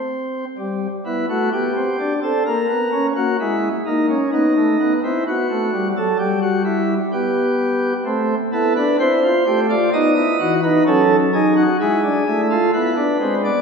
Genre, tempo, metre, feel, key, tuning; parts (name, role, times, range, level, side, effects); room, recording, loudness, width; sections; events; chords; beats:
classical, baroque-style 4-part fugue for pipe organ; 64 BPM; 4/4; straight; A4 = 440 Hz
pipe organ, sparkling flutes; solo; 0.0-13.6 s; E3 to D#5; -16 LUFS; equal
wet concert hall reverb, RT60 2.2 s; heard from further back in the room; -16 LUFS; side -5 dB against mid
0.0-13.6 A section
0.0 N.C.; 0.6 Em/G; 2.5 F#7/A#; 4.3 B7; 6.2 Em/G; 8.1 Am; 9.9 B7; 11.8 E7/G#
| 0.58 1.52 2.46 3.40 | 4.33 5.26 6.20 7.12 | 8.06 9.00 9.93 10.87 | 11.80 12.74